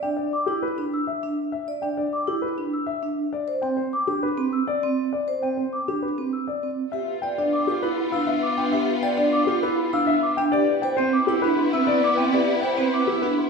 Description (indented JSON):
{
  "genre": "classical, minimalist pattern music",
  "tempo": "100 BPM",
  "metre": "3/4",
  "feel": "straight",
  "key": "G mixolydian",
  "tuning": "A4 = 440 Hz",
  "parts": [
    { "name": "warm concert grand piano", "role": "melody", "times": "0.0-13.4 s", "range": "G4 to G5", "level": "-26 LUFS", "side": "left 6 dB", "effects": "none" },
    { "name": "vibraphone with medium mallets", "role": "arpeggios", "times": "0.0-13.4 s", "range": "C4 to D5", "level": "-24 LUFS", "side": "right 4 dB", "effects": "none" },
    { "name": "small celesta", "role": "arpeggios", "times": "0.3-13.5 s", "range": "B5 to E6", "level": "-28 LUFS", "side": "left 1 dB", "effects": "none" },
    { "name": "rich symphonic violin section", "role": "sustained chords", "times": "6.9-13.5 s", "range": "B3 to F4", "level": "-27 LUFS", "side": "left 3 dB", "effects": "none" }
  ],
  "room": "wet recital hall reverb, RT60 1.4 s",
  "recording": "heard from further back in the room",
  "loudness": "-21 LUFS",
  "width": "side -4 dB against mid",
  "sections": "0.0-6.9 A section; 6.9-13.5 A section",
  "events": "none",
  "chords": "0.0 G5; 3.3 C5; 6.9 G7; 10.5 Cmaj7",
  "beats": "0.33 0.93 | 1.53 2.13 2.73 | 3.33 3.93 4.53 | 5.13 5.73 6.33 | 6.93 7.53 8.13 | 8.73 9.33 9.93 | 10.53 11.13 11.73 | 12.33 12.93"
}